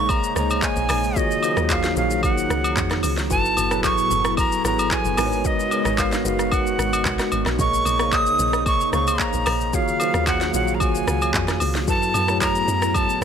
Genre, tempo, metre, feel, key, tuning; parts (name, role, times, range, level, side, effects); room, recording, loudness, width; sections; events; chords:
amapiano; 112 BPM; 4/4; straight; A4 = 441 Hz
breathy bright jazz flute; melody; 0.0-13.2 s; Eb5 to Eb6; -23 LUFS; right 1 dB; tape echo
tine electric piano; accompaniment; 0.0-13.2 s; Eb3 to F5; -25 LUFS; equal; medium stereo tremolo
airy breathy pad; sustained chords; 0.0-13.2 s; A2 to F5; -30 LUFS; equal; chorus, sidechain pumping
deep log drum bass; bass; 0.0-13.2 s; Gb1 to Gb2; -26 LUFS; equal
afro-pop drum kit; drums; 0.1-13.2 s; handclaps, hi-hat, kick drum, rim click, shaker, snare drum; -25 LUFS; equal
agogo bells; percussion; 0.1-13.1 s; -28 LUFS; left 1 dB
digital ambience; -18 LUFS; side -8 dB against mid
0.0-13.2 A section
0.0 Bbm11; 1.2 Ebm11; 3.3 Gbm11; 5.2 Abm11; 7.6 Bbm11; 9.7 Ebm11; 11.9 Gbm11